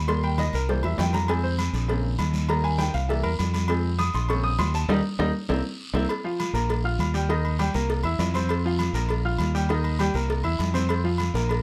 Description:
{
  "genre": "latin, salsa",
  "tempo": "200 BPM",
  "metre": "4/4",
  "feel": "straight",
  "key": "F minor",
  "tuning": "A4 = 439 Hz",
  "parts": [
    { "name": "bright grand piano", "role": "accompaniment", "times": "0.0-11.6 s", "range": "Db3 to F6", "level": "-30 LUFS", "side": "equal", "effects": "none" },
    { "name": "modern bright fingered electric bass", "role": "bass", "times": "0.0-11.6 s", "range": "Bb1 to F2", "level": "-28 LUFS", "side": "equal", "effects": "none" },
    { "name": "agogo bells and timbales", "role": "percussion", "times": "0.1-11.6 s", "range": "none", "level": "-36 LUFS", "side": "equal", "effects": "none" },
    { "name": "congas", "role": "percussion", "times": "0.1-11.6 s", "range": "none", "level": "-36 LUFS", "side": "equal", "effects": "none" },
    { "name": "cowbell and bongos", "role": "percussion", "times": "0.1-11.6 s", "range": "none", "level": "-35 LUFS", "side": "equal", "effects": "none" },
    { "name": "guiro", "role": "percussion", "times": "0.1-11.6 s", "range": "none", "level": "-42 LUFS", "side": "equal", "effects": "none" }
  ],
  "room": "little or no reverb",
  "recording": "close, detailed microphones",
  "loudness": "-25 LUFS",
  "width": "mono",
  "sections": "0.0-6.1 A section; 6.1-11.6 B section",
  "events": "grand piano solo 0.0-6.1; drum fill 0.8-1.3, 5.2-6.1; band accent 4.9-6.1",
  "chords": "0.1 Eb; 0.7 C7; 1.3 Fm; 1.9 Bbmadd9; 2.5 Eb; 3.1 C7; 3.7 Fm; 4.3 Bbmadd9; 4.9 Eb; 5.5 C7; 6.1 Bb5; 7.3 Eb; 7.9 C7; 8.5 F5; 9.1 Bb5; 9.7 Eb; 10.3 C7; 10.9 F5",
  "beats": "| 0.09 0.39 0.69 0.99 | 1.29 1.59 1.89 2.19 | 2.49 2.79 3.09 3.39 | 3.69 3.99 4.29 4.59 | 4.89 5.19 5.49 5.79 | 6.09 6.39 6.69 6.99 | 7.29 7.59 7.89 8.19 | 8.49 8.79 9.10 9.39 | 9.70 9.99 10.29 10.60 | 10.89 11.19 11.49"
}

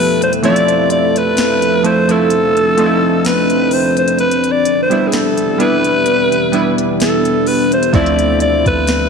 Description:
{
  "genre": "contemporary R&B",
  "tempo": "64 BPM",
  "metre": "4/4",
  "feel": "swing 54% on 16ths",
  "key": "D dorian",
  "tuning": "A4 = 439 Hz",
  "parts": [
    { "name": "growling alto saxophone", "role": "melody", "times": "0.0-9.1 s", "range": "G#4 to D5", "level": "-15 LUFS", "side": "left 1 dB", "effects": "tape echo" },
    { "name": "warm analog keys", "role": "accompaniment", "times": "0.0-9.1 s", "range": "E3 to E4", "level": "-17 LUFS", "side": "right 2 dB", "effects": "chorus" },
    { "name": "deep dark ambient pad", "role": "sustained chords", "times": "0.0-9.1 s", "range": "E3 to B4", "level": "-17 LUFS", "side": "left 1 dB", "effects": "chorus, built-in reverb" },
    { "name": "smooth R&B drum kit", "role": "drums", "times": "0.2-9.1 s", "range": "hi-hat, kick drum, snare drum", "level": "-21 LUFS", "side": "left 1 dB", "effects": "none" },
    { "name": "warm 808-style bass", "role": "bass", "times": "7.9-9.1 s", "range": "D2", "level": "-19 LUFS", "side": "equal", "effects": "none" }
  ],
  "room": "moderate plate reverb, RT60 2.6 s",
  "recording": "dreamy mix soaked in reverb",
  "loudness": "-11 LUFS",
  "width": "side -5 dB against mid",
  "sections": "0.0-9.1 A section",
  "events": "break 0.0-7.9",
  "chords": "0.4 Dm7; 4.2 Em7; 7.9 Dm7",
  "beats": "| 0.43 1.37 2.31 3.25 | 4.18 5.12 6.06 7.00 | 7.93 8.87"
}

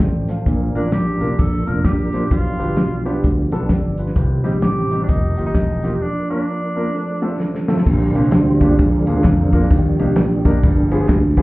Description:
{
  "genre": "uptempo gospel",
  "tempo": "130 BPM",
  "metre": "4/4",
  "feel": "swing 62% on 8ths",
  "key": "Bb major",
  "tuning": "A4 = 440 Hz",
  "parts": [
    { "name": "clear concert grand piano", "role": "accompaniment", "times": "0.0-11.4 s", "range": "G2 to G5", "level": "-22 LUFS", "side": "equal", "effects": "none" },
    { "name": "mellow tonewheel organ", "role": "sustained chords", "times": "0.0-11.3 s", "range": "D3 to D5", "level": "-22 LUFS", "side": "right 2 dB", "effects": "slow rotary speaker, chorus vibrato" },
    { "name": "sustaining fretless electric bass", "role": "bass", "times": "0.0-11.4 s", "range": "E1 to F2", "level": "-19 LUFS", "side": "equal", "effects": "none" },
    { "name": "warm soul drum kit", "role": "drums", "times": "0.0-11.4 s", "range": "crash cymbal, hi-hat, kick drum, ride cymbal, snare drum", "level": "-17 LUFS", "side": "equal", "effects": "none" },
    { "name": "breathy tenor saxophone", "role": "melody", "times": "0.8-7.6 s", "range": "D4 to Bb4", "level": "-26 LUFS", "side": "equal", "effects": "none" },
    { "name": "tambourine and handclaps", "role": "percussion", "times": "7.9-11.4 s", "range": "none", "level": "-40 LUFS", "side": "left 1 dB", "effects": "none" }
  ],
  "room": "light reverb, studio ambience",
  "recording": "heard muffled through a wall, club reverb, EQ",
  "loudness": "-15 LUFS",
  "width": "side -19 dB against mid",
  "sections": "0.0-7.9 A section; 7.9-11.4 B section",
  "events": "break 6.0-7.9; drum fill 7.4-7.9; tonewheel organ solo 7.9-11.4",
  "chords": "0.5 Bb; 2.3 G7; 4.2 Cm; 5.1 F9sus4; 6.0 Bb/F; 6.9 F; 7.9 Bb6; 8.8 Bb7; 9.7 Ebmaj7; 10.6 G7b9",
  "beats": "0.00 | 0.46 0.93 1.39 1.85 | 2.31 2.77 3.24 3.70 | 4.16 4.62 5.09 5.55 | 6.01 6.47 6.94 7.40 | 7.86 8.32 8.79 9.25 | 9.71 10.17 10.63 11.09"
}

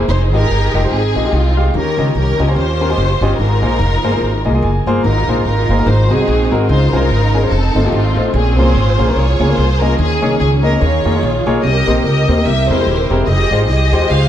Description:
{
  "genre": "uptempo gospel",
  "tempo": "146 BPM",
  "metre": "4/4",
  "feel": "swing 58% on 8ths",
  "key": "Ab major",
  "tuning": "A4 = 440 Hz",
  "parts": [
    { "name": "warm studio string section", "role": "melody", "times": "0.0-14.3 s", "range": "Ab3 to F5", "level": "-17 LUFS", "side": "right 1 dB", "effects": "ping-pong delay" },
    { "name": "warm concert grand piano", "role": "accompaniment", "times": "0.0-14.2 s", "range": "Ab2 to Ab5", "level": "-18 LUFS", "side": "left 2 dB", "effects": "none" },
    { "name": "upright bass", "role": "bass", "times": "0.0-14.3 s", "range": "Eb1 to F2", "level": "-15 LUFS", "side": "equal", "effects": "none" }
  ],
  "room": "light reverb, small room ambience",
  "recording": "none",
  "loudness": "-12 LUFS",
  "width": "side -10 dB against mid",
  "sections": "0.0-5.0 A section; 5.0-14.3 A section",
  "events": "grand piano fill 4.4-5.0",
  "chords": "0.1 Fm9; 1.7 Eb9; 3.4 Ab69; 5.9 Ab7; 6.7 Dbmaj9; 7.5 F7; 8.3 Bbm9; 10.0 Eb7sus4; 10.8 Eb9sus4; 11.6 Cm7; 12.5 C7b13; 13.3 Fm9",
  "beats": "| 0.09 0.50 0.92 1.33 | 1.74 2.15 2.56 2.98 | 3.39 3.80 4.22 4.63 | 5.04 5.45 5.87 6.28 | 6.69 7.10 7.51 7.93 | 8.34 8.75 9.16 9.57 | 9.99 10.40 10.81 11.22 | 11.63 12.04 12.46 12.87 | 13.28 13.69 14.10"
}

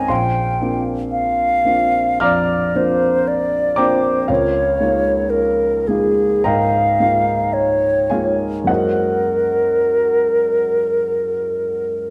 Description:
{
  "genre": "classical, impressionist duo for flute and grand piano",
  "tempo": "50-60 BPM",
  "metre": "4/4",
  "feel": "rubato",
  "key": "unclear",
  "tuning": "A4 = 439 Hz",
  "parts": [
    { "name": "mellow hollow silver concert flute", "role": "melody", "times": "0.0-12.1 s", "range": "Ab4 to Ab5", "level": "-19 LUFS", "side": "equal", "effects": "none" },
    { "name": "dark baby grand piano", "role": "accompaniment", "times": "0.0-12.1 s", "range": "Bb1 to F6", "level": "-22 LUFS", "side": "equal", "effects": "none" }
  ],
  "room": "moderate recital hall reverb, RT60 1.3 s",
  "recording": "none",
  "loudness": "-17 LUFS",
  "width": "mono",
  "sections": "0.0-12.1 A section",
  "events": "none",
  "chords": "0.1 Bbadd9; 4.3 Db69; 8.7 Gb9",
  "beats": "| 0.10 1.11 2.22 3.27 | 4.29 5.32 6.44 7.54 | 8.69 9.86 10.98 12.08"
}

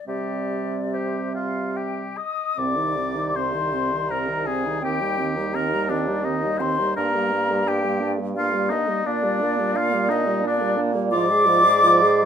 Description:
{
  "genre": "classical, slow romantic movement for wind quintet",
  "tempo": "69-88 BPM",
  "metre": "3/4",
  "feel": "rubato",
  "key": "C minor",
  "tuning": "A4 = 441 Hz",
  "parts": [
    { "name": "hollow concert flute", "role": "melody", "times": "0.0-12.3 s", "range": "C5 to Eb6", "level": "-25 LUFS", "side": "left 5 dB", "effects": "none" },
    { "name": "warm oboe", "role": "second line", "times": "0.1-12.3 s", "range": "D4 to Eb5", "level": "-25 LUFS", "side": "equal", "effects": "none" },
    { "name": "clear clarinet", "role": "accompaniment", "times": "0.1-12.3 s", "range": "Bb3 to Ab4", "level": "-29 LUFS", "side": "right 6 dB", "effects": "none" },
    { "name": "mellow French horn", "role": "accompaniment", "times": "0.1-12.3 s", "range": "C3 to Bb3", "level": "-29 LUFS", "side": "right 1 dB", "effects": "none" },
    { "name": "warm bassoon", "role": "bass", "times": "0.1-12.3 s", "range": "C2 to C3", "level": "-26 LUFS", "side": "right 2 dB", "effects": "none" }
  ],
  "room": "moderate large studio reverb, RT60 0.9 s",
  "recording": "minimal, uncompressed stereo recording",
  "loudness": "-20 LUFS",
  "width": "side -8 dB against mid",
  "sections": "0.0-2.6 A section; 2.6-12.3 B section",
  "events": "none",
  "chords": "0.1 C5; 2.6 Cm; 4.8 Cm/Eb; 7.0 Gm; 9.1 Gm/Bb; 11.1 Fm/Ab",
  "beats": "| 0.07 0.92 1.76 | 2.58 3.35 4.09 | 4.82 5.54 6.25 | 6.97 7.68 8.37 | 9.07 9.76 10.45 | 11.14 11.85"
}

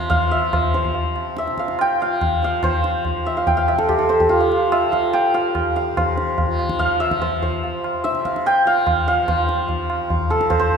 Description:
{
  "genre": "indian classical, Hindustani",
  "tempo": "144 BPM",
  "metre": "4/4",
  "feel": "straight",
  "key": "F raga hamsadhwani",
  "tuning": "A4 = 440 Hz",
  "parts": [
    { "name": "santur", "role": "melody", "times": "0.0-10.8 s", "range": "F4 to G5", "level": "-19 LUFS", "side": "equal", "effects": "none" },
    { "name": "tanpura", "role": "drone", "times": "0.0-10.8 s", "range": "F2 to F3", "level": "-28 LUFS", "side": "equal", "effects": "none" },
    { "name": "tabla", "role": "percussion", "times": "0.1-10.8 s", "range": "none", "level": "-22 LUFS", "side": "equal", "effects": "none" }
  ],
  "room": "wet scoring stage reverb, RT60 2.0 s",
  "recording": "recorded in a church or concert hall",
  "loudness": "-17 LUFS",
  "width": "side -6 dB against mid",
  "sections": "0.0-10.8 A section",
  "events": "speeding up 0.0-10.8",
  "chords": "none",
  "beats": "0.11 0.53 | 0.95 1.37 1.79 2.21 | 2.63 3.05 3.47 3.89 | 4.30 4.72 5.14 5.55 | 5.97 6.38 6.80 7.21 | 7.63 8.04 8.45 8.87 | 9.28 9.69 10.10 10.51"
}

